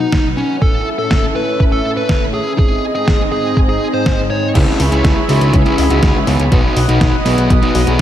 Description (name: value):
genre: italo disco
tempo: 122 BPM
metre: 4/4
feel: straight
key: C# minor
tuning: A4 = 440 Hz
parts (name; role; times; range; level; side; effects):
- fuzz lead guitar; melody; 0.0-8.0 s; B3 to C#5; -18 LUFS; equal; distortion, analog delay
- warm analog pad; sustained chords; 0.0-8.0 s; B#3 to D#6; -20 LUFS; right 1 dB; chorus
- mellow synth brass; stabs; 0.0-7.9 s; G#2 to F#5; -21 LUFS; left 2 dB; chorus, analog delay
- detuned 8-bit digital drum machine; drums; 0.1-8.0 s; crash cymbal, hi-hat, snare drum; -22 LUFS; equal; overdrive
- electronic kick drum; drums; 0.1-7.6 s; none; -14 LUFS; equal; overdrive
- fat analog bass; bass; 4.6-8.0 s; B1 to C#2; -15 LUFS; equal; none
room: moderate lush hall reverb, RT60 2.1 s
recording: dreamy mix soaked in reverb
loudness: -12 LUFS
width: side -11 dB against mid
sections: 0.0-4.6 A section; 4.6-8.0 B section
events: filter sweep on analog synth pad 0.0-4.6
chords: 0.0 B; 0.6 A; 2.6 G#; 4.6 C#m7; 6.5 B